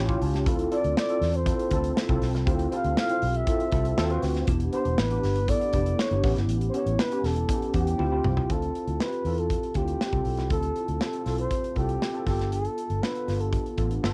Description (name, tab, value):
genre	polished 1980s jazz-funk pop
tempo	120 BPM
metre	4/4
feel	straight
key	D dorian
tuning	A4 = 440 Hz
part	breathy flugelhorn	melody	0.0-13.8 s	G4 to F5	-32 LUFS	equal	cassette tape
part	tine electric piano	accompaniment	0.0-14.1 s	B3 to A5	-32 LUFS	equal	ensemble chorus, cassette tape
part	vintage muted fingered electric bass	bass	0.0-14.1 s	E1 to E2	-30 LUFS	equal	none
part	modern studio drum kit	drums	0.1-14.1 s	hi-hat, kick drum, snare drum, toms	-31 LUFS	equal	cassette tape
room	light reverb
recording	home recording on cassette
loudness	-26 LUFS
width	mono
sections	0.0-8.5 A section; 8.5-14.1 B section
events	tine electric piano fill 0.0-0.5; drum fill 8.0-8.5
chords	0.5 Dm9; 4.0 D#dim7; 4.5 Em7; 6.2 A7; 8.0 Dm11; 8.5 Dm9; 12.3 G7